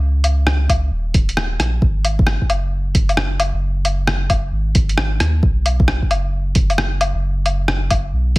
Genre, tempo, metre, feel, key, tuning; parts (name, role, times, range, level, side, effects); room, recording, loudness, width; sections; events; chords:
future garage; 133 BPM; 4/4; swing 64% on 16ths; A4 = 440 Hz
warm sub bass; bass; 0.0-8.4 s; Eb1 to Eb2; -18 LUFS; equal; sidechain pumping
lo-fi sampler-style drum kit; drums; 0.2-8.4 s; hi-hat, rim click, woodblock; -20 LUFS; left 1 dB; overdrive, small room ambience
electronic kick drum; drums; 0.7-8.4 s; -16 LUFS; equal; small room ambience
little or no reverb; -15 LUFS; side -21 dB against mid
0.0-8.4 A section